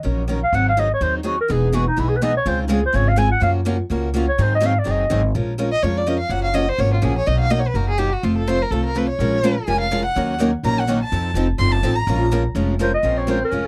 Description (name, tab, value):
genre	acoustic string swing (jazz manouche)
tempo	249 BPM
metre	4/4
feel	swing 56% on 8ths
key	Bb minor from 5.3 s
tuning	A4 = 440 Hz
part	picked steel-string acoustic guitar	accompaniment	0.0-13.7 s	B2 to Bb4	-26 LUFS	equal	none
part	upright bass	bass	0.0-13.7 s	E1 to Ab2	-23 LUFS	equal	none
part	breathy clarinet	melody	0.4-5.3, 12.8-13.7 s	D#4 to Ab5	-22 LUFS	equal	none
part	picked steel-string acoustic guitar	accompaniment	1.5-5.2, 9.2-13.7 s	Db3 to Bb4	-29 LUFS	equal	none
part	warm violin	second line	5.7-13.7 s	C4 to C6	-25 LUFS	equal	none
room	light reverb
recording	dark, warm production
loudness	-19 LUFS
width	mono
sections	0.0-5.3 A section; 5.3-13.0 A section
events	clarinet solo 0.0-5.3; violin solo 5.3-13.0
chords	0.0 Ebm7; 0.5 Ab7; 1.5 Emaj7; 2.5 Dbmaj7; 3.4 Gbmaj7; 4.4 Ab7; 5.3 Bbm7; 6.3 Gbmaj7; 7.3 Bmaj7; 8.2 F; 9.2 Bbm7; 10.2 Ebm7; 11.1 F7; 12.1 Bbm7